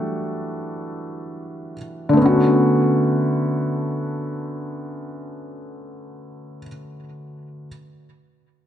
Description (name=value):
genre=R&B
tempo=free time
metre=none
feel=none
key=B minor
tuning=A4 = 440 Hz
part: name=felt-muted upright piano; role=solo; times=0.0-7.7 s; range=D3 to F#4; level=-21 LUFS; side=equal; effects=analog delay
room=moderate echo chamber reverb, RT60 2.5 s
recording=echo-heavy mix, nothing above 10.4 kHz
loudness=-18 LUFS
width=side -10 dB against mid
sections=0.0-2.2 A section; 2.2-5.2 B section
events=none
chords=0.0 Em11; 2.2 Bm9